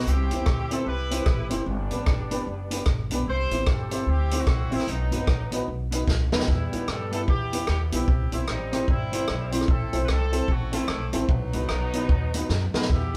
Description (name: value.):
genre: ska.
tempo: 150 BPM.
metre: 4/4.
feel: swing 61% on 8ths.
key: E harmonic minor from 6.5 s.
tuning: A4 = 443 Hz.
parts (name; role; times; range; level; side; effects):
clear horn section; melody; 0.0-13.2 s; F#3 to C5; -34 LUFS; equal; none.
mellow electric guitar; accompaniment; 0.0-13.2 s; B3 to C5; -35 LUFS; equal; phaser, tape echo.
dark upright piano; stabs; 0.0-13.2 s; B3 to C5; -35 LUFS; equal; none.
upright bass; bass; 0.0-13.2 s; F#1 to G2; -30 LUFS; equal; tube saturation.
vintage drum kit; drums; 0.1-13.2 s; hi-hat, kick drum, rim click, snare drum; -28 LUFS; equal; none.
room: moderate studio reverb, RT60 0.7 s.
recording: band playing live in one room.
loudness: -25 LUFS.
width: mono.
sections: 0.0-6.5 A section; 6.5-13.2 B section.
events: drum fill 6.1-6.5, 12.5-12.9.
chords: 0.1 C; 1.7 G; 3.3 C; 4.9 B; 6.5 Em; 8.1 C; 9.7 Am; 11.3 B.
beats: | 0.06 0.46 0.86 1.26 | 1.67 2.07 2.47 2.87 | 3.27 3.67 4.07 4.47 | 4.87 5.27 5.67 6.08 | 6.48 6.88 7.28 7.68 | 8.08 8.48 8.88 9.29 | 9.69 10.09 10.49 10.89 | 11.29 11.69 12.09 12.49 | 12.89.